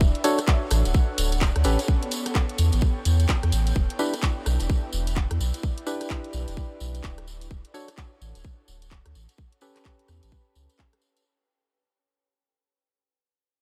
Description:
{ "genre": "UK garage, two-step garage", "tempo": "128 BPM", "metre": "4/4", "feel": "swing 61% on 16ths", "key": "unclear", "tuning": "A4 = 440 Hz", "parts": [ { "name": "saturated sub bass", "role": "bass", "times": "0.0-10.7 s", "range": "D1 to E2", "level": "-26 LUFS", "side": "equal", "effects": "tube saturation" }, { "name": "electronic kick drum", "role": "drums", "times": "0.0-10.9 s", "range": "none", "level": "-26 LUFS", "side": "equal", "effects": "none" }, { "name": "tambourine", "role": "percussion", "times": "0.0-11.2 s", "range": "none", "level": "-38 LUFS", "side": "equal", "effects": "none" }, { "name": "airy breathy pad", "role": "texture", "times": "0.0-11.3 s", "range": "B3 to G5", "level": "-38 LUFS", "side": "equal", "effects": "chorus, phaser, sidechain pumping" }, { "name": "garage drum kit", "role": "drums", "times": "0.1-11.2 s", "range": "handclaps, hi-hat, rim click", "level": "-35 LUFS", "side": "equal", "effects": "none" }, { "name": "percussive organ stab", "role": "stabs", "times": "0.2-11.2 s", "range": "C#4 to C#5", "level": "-32 LUFS", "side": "equal", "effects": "chorus, delay" } ], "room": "light reverb", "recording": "none", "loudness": "-24 LUFS", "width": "mono", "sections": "0.0-11.3 A section", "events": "fade-out on analog synth pad 0.0-11.3; fade-out 0.0-11.3", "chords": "0.0 Dmaj7; 1.6 A9; 3.8 Em7; 7.3 Dmaj7; 9.1 A9" }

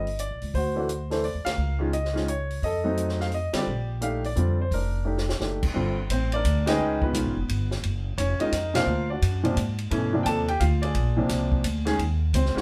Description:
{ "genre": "jazz piano trio", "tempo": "173 BPM", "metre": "3/4", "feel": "swing 64% on 8ths", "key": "Bb major", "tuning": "A4 = 441 Hz", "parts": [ { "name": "warm baby grand piano", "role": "melody", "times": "0.0-12.6 s", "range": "Cb3 to A5", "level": "-29 LUFS", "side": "equal", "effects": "none" }, { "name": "upright bass", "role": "bass", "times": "0.0-12.6 s", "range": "F1 to Ab2", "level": "-29 LUFS", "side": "equal", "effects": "none" }, { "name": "compact cocktail drum kit", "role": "drums", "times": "0.1-12.6 s", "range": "crash cymbal, hi-hat, kick drum, ride cymbal, snare drum", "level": "-35 LUFS", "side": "equal", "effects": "none" } ], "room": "wet studio reverb, RT60 0.5 s", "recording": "band playing live in one room", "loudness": "-26 LUFS", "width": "mono", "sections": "0.0-5.8 A section; 5.8-12.6 B section", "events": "band accent 1.4, 3.5, 6.6, 8.7; drum fill 5.1-5.4", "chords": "0.0 Gm; 0.5 D9; 1.6 Db69; 2.6 F7b9; 3.7 Bb6; 5.8 Gmadd9; 6.8 Db9; 7.8 Gbmaj7; 8.9 D7alt; 9.9 Gm9; 11.0 Bb7; 12.0 Eb7(no3)" }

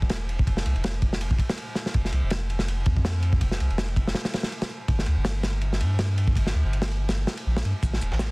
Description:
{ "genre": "drum and bass, jungle", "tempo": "163 BPM", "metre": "4/4", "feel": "swing 55% on 16ths", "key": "unclear", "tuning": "A4 = 440 Hz", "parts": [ { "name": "soft dub sub bass", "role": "bass", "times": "0.0-8.3 s", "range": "E1 to G2", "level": "-25 LUFS", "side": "equal", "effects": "none" }, { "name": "crunchy breakbeat drum kit", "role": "drums", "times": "0.0-8.3 s", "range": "kick drum, ride cymbal, snare drum", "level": "-25 LUFS", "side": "equal", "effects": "none" }, { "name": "electronic shaker and snare drum", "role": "drums", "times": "7.8-8.3 s", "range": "none", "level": "-37 LUFS", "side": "right 2 dB", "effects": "high-pass filter on perc, high-pass filter on snare" } ], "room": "small room reverb", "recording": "dense, heavily limited modern master, vinyl crackle", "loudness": "-23 LUFS", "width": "side -30 dB against mid", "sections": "0.0-8.3 A section", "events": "none", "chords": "none" }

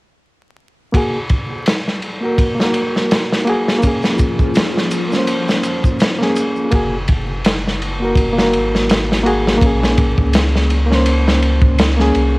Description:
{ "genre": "trip hop", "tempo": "83 BPM", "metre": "4/4", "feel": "swing 56% on 16ths", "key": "unclear", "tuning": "A4 = 440 Hz", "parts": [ { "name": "reed electric piano", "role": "accompaniment", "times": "0.9-12.4 s", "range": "A#3 to B#4", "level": "-18 LUFS", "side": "equal", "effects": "overdrive, tremolo, low-pass filter, cassette tape, tape echo" }, { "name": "crunchy breakbeat drum kit", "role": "drums", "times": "0.9-12.3 s", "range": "kick drum, ride cymbal, snare drum", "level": "-16 LUFS", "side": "equal", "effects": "cassette tape" }, { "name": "string machine, cellos", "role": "sustained chords", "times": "3.8-6.7 s", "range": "E#3 to E#4", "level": "-24 LUFS", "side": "left 1 dB", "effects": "phaser, ensemble chorus, cassette tape" }, { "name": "egg shaker", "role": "percussion", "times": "3.8-6.7 s", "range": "none", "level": "-37 LUFS", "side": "right 2 dB", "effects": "none" }, { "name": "soft dub sub bass", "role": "bass", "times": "6.7-12.4 s", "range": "F#1 to C#2", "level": "-18 LUFS", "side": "equal", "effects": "none" } ], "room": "small room ambience", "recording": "home recording on cassette, vinyl crackle", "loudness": "-13 LUFS", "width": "side -24 dB against mid", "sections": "0.9-6.7 A section; 6.7-12.4 B section", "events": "filter sweep on reed electric piano 0.9-6.7", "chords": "0.9 F#add9; 3.8 A#m7; 6.7 F#add9; 9.6 A#m7" }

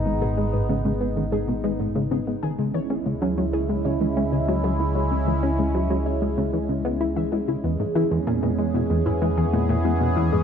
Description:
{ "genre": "ambient, sequencer-driven space music", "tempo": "95 BPM", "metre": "4/4", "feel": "straight", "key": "unclear", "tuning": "A4 = 441 Hz", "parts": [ { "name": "sweeping resonant pad", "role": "sustained chords", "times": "0.0-10.4 s", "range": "E3 to G#4", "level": "-26 LUFS", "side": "right 2 dB", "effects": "chorus, phaser" }, { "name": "analog drone", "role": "bass", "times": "0.0-10.4 s", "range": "G#1 to E2", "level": "-27 LUFS", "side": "equal", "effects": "chorus" }, { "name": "warbly dusty pluck", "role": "arpeggios", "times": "0.1-10.4 s", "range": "G#3 to E5", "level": "-28 LUFS", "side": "moving between left 9 dB and right 3 dB", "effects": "chorus, auto-pan, ping-pong delay" }, { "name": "plucky analog bass", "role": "riff", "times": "0.1-10.4 s", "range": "E2 to E4", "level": "-25 LUFS", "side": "equal", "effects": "wide subtle chorus, ping-pong delay" } ], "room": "moderate plate reverb, RT60 2.7 s", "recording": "dark, warm production", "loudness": "-21 LUFS", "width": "side -7 dB against mid", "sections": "0.0-10.4 A section", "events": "filter sweep on analog synth bass 0.0-10.4", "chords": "0.0 G#m; 2.6 C#m; 7.6 E6" }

